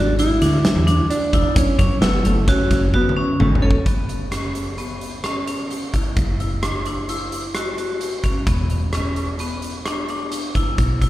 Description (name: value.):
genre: progressive instrumental, band music in an uneven meter.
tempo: 130 BPM.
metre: 5/4.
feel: straight.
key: F# minor.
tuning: A4 = 440 Hz.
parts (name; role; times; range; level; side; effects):
mellow electric guitar; second line; 0.0-3.8 s; A3 to E4; -22 LUFS; right 2 dB; slapback echo.
vibraphone with hard mallets; arpeggios; 0.0-11.1 s; B3 to A4; -25 LUFS; left 2 dB; tape echo, slapback echo.
fingered electric bass; bass; 0.0-11.1 s; E1 to F#2; -21 LUFS; equal; none.
huge arena drum kit; drums; 0.2-11.1 s; hi-hat, kick drum, rim click, snare drum, toms; -22 LUFS; equal; none.
room: light reverb, small room ambience.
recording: live gig heard through the venue's PA, recital hall reverb.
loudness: -17 LUFS.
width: side -15 dB against mid.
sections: 0.0-3.9 A section; 3.9-11.1 B section.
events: drum fill 2.9-3.9.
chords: 0.0 E7; 1.6 F#7(no3); 3.9 F#sus4; 6.2 D/F#; 8.5 E5.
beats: 0.18 0.64 1.10 | 1.56 2.02 2.48 2.94 3.40 | 3.86 4.32 4.78 5.25 5.71 | 6.17 6.63 7.09 7.55 8.02 | 8.48 8.94 9.40 9.86 10.32 | 10.79.